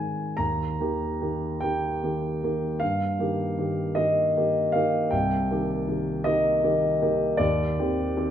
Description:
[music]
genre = classical, romantic nocturne for solo piano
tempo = 41-54 BPM (dotted quarters)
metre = 12/8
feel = rubato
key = Eb major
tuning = A4 = 440 Hz
[part]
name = warm concert grand piano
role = solo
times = 0.0-8.3 s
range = C2 to Bb5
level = -23 LUFS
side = equal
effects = none
[sound]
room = wet recital hall reverb, RT60 1.6 s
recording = none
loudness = -23 LUFS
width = side -10 dB against mid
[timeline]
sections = 0.4-8.3 A section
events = none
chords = 0.4 Eb; 2.8 Eb/G; 5.1 Cm7; 7.4 Cm/Eb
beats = | 0.40 1.62 2.81 3.96 | 5.12 6.26 7.41

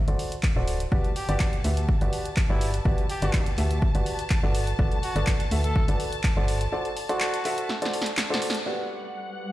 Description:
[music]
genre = piano house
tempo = 124 BPM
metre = 4/4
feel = straight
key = G major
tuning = A4 = 440 Hz
[part]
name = organ-like FM bass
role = bass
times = 0.0-6.7 s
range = D1 to D2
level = -25 LUFS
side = equal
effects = sidechain pumping
[part]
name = warm upright piano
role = riff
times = 0.1-9.5 s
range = F#4 to E5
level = -30 LUFS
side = equal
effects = sidechain pumping, low-pass filter, dub echo
[part]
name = punchy analog drum machine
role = drums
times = 0.1-8.6 s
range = handclaps, hi-hat, snare drum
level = -31 LUFS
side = equal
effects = none
[part]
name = electronic kick drum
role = drums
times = 0.4-6.3 s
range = none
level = -24 LUFS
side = equal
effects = none
[part]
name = warm symphonic string section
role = sustained chords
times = 0.9-9.5 s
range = F#5 to A5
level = -37 LUFS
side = left 2 dB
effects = sidechain pumping, low-pass filter
[part]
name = warm trumpet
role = melody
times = 1.2-7.8 s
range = E4 to A4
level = -36 LUFS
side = right 1 dB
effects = dub echo
[part]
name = granular cloud pad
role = texture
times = 8.9-9.5 s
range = G3 to F#5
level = -40 LUFS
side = equal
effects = built-in reverb, sidechain pumping
[sound]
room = light reverb, digital ambience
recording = played on a big sound system in a bare room, stone room reverb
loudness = -23 LUFS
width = side -15 dB against mid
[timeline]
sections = 0.0-8.7 A section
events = break 6.7-8.7; drum fill 7.7-8.7; band accent 8.5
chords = 0.0 D7/G; 0.9 Gmaj7; 4.5 Bm7/G; 6.5 D7/G; 8.7 Gmaj7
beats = 0.44 | 0.92 1.40 1.89 2.37 | 2.85 3.34 3.82 4.31 | 4.79 5.27 5.76 6.24 | 6.73 7.21 7.69 8.18 | 8.66 9.14

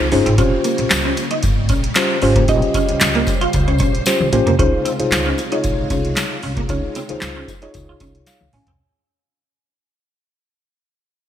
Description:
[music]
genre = early-eighties boogie funk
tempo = 114 BPM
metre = 4/4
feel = straight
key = unclear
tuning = A4 = 442 Hz
[part]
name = mellow tine electric piano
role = accompaniment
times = 0.0-8.8 s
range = C4 to Ab5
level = -20 LUFS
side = left 1 dB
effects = medium stereo tremolo
[part]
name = string machine, violins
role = sustained chords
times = 0.0-8.8 s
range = C3 to C5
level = -26 LUFS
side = equal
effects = ensemble chorus
[part]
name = upright bass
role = bass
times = 0.0-8.8 s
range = G1 to Eb2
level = -20 LUFS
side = equal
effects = none
[part]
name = clean electric guitar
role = riff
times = 0.1-8.8 s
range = Bb3 to F4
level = -24 LUFS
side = right 2 dB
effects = ensemble chorus
[part]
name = booming analog drum machine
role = drums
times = 0.1-8.8 s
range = handclaps, hi-hat, kick drum, snare drum, toms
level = -19 LUFS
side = equal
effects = gated reverb
[part]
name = tambourine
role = percussion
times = 0.4-8.4 s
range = none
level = -31 LUFS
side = left 5 dB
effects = none
[sound]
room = light reverb, digital ambience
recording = bright 1980s-style digital production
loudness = -15 LUFS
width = side -10 dB against mid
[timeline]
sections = 0.0-4.6 A section; 4.6-8.8 B section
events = drum fill 4.1-4.6, 8.3-8.8; fade-out 4.6-8.8; tine electric piano fill 8.0-8.8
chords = 0.0 Bbm69; 4.6 Dbmaj7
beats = | 0.38 0.91 1.43 1.96 | 2.48 3.01 3.54 4.06 | 4.59 5.12 5.64 6.17 | 6.70 7.22 7.75 8.27

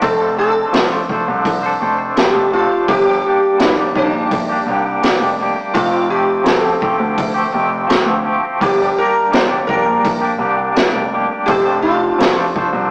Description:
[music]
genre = psychedelic rock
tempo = 84 BPM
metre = 4/4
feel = straight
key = G minor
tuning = A4 = 439 Hz
[part]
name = sitar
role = melody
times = 0.0-12.9 s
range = D4 to C5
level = -20 LUFS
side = equal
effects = none
[part]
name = twangy electric guitar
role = riff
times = 0.0-12.9 s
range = F3 to C5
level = -20 LUFS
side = equal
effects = tremolo
[part]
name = warm baby grand piano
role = bass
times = 0.0-12.9 s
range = F1 to F2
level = -25 LUFS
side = equal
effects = none
[part]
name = raw garage drum kit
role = drums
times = 0.0-12.7 s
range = hi-hat, kick drum, snare drum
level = -21 LUFS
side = equal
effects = none
[sound]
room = moderate stone room reverb, RT60 1.2 s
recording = rough rehearsal-room recording, warm saturation, small speaker sound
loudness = -15 LUFS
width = mono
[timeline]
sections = 0.0-12.9 A section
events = none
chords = 0.0 Dm7/F; 2.9 Gm; 5.7 Fadd9; 8.6 Gm; 11.5 Dm7/F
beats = | 0.02 0.74 1.45 2.17 | 2.89 3.60 4.32 5.03 | 5.75 6.46 7.18 7.90 | 8.61 9.33 10.05 10.76 | 11.48 12.20

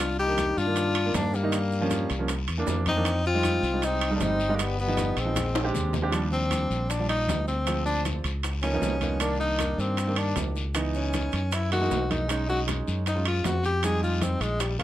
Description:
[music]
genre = Afro-Cuban jazz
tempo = 156 BPM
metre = 4/4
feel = straight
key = C minor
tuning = A4 = 440 Hz
[part]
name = clear tenor saxophone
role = melody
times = 0.0-14.8 s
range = G3 to Ab4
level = -28 LUFS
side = left 2 dB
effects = plate reverb
[part]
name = breathy trombone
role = second line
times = 0.0-5.8 s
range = G3 to Eb4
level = -34 LUFS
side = left 4 dB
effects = none
[part]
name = modern bright fingered electric bass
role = bass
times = 0.0-14.8 s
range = G1 to G2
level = -28 LUFS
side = equal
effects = none
[part]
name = bongos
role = percussion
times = 0.0-14.8 s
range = none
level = -37 LUFS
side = left 7 dB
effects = none
[part]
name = congas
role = percussion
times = 0.0-14.8 s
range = none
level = -37 LUFS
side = left 2 dB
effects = none
[part]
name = timbales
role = percussion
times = 0.0-14.8 s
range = none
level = -34 LUFS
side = right 6 dB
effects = none
[part]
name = maracas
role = percussion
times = 0.2-14.8 s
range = none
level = -42 LUFS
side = right 6 dB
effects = none
[part]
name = warm grand piano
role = accompaniment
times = 0.3-14.8 s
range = Eb3 to D5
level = -31 LUFS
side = right 3 dB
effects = none
[part]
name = guiro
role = percussion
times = 0.4-14.8 s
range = none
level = -41 LUFS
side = left 6 dB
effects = none
[sound]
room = light reverb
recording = none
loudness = -24 LUFS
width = side -13 dB against mid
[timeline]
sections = 0.0-6.1 A section; 6.1-14.8 B section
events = drum fill 5.4-6.1; tenor saxophone solo 6.1-14.8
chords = 0.0 Cm9; 1.5 Gm7b5; 2.3 C7; 3.1 Fm9; 4.6 G7b13; 5.4 Bb13; 6.1 Ebmaj9; 7.7 Dm7b5; 8.4 Db13; 9.2 Cm7; 10.8 Dbm7; 11.5 Gb13; 12.3 B69; 13.8 Fm9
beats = 0.38 0.76 1.15 | 1.53 1.91 2.29 2.68 | 3.06 3.44 3.83 4.21 | 4.59 4.98 5.36 5.75 | 6.13 6.52 6.90 7.29 | 7.67 8.06 8.44 8.83 | 9.21 9.60 9.99 10.37 | 10.76 11.14 11.53 11.91 | 12.30 12.68 13.07 13.45 | 13.84 14.22 14.60

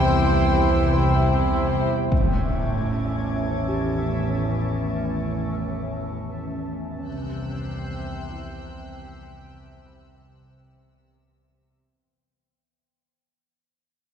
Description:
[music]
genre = cinematic, suspense film score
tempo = free time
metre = none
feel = none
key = unclear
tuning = A4 = 440 Hz
[part]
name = warm symphonic violin section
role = melody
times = 0.0-1.9 s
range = G5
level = -32 LUFS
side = left 4 dB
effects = none
[part]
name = warm symphonic violin section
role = second line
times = 0.0-1.9 s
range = C5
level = -29 LUFS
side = equal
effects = none
[part]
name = warm studio viola section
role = accompaniment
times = 0.0-1.9 s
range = E4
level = -28 LUFS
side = equal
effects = none
[part]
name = bubbling stepped-filter texture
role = sustained chords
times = 0.0-12.0 s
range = C#4 to A5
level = -29 LUFS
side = left 1 dB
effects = chorus, built-in reverb
[part]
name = rich symphonic cello section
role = bass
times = 0.0-11.8 s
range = A2 to C3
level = -29 LUFS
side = right 1 dB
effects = none
[part]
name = warm symphonic double bass section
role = bass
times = 0.0-11.8 s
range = A1 to C2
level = -29 LUFS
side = right 2 dB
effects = none
[part]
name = metallic inharmonic drone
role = drone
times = 0.0-12.0 s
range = E2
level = -30 LUFS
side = left 2 dB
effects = chorus, built-in reverb
[part]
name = dark baby grand piano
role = texture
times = 0.0-12.0 s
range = E4 to B5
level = -39 LUFS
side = left 2 dB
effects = none
[part]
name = dark symphonic violin section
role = texture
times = 0.0-11.7 s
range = C6 to G#6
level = -39 LUFS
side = left 3 dB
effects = none
[part]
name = warm French horn section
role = sustained chords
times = 0.9-1.1 s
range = E3 to C4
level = -34 LUFS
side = left 5 dB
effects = none
[part]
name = impact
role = sound effects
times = 2.1-4.6 s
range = none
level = -25 LUFS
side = left 1 dB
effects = none
[sound]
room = wet concert hall reverb, RT60 1.7 s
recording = dark, warm production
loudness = -21 LUFS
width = side -8 dB against mid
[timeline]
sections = 0.0-2.1 A section; 2.1-12.0 B section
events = fade-out 2.1-12.0; impact 2.1-4.6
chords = 0.0 C; 2.1 A; 7.1 C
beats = free time

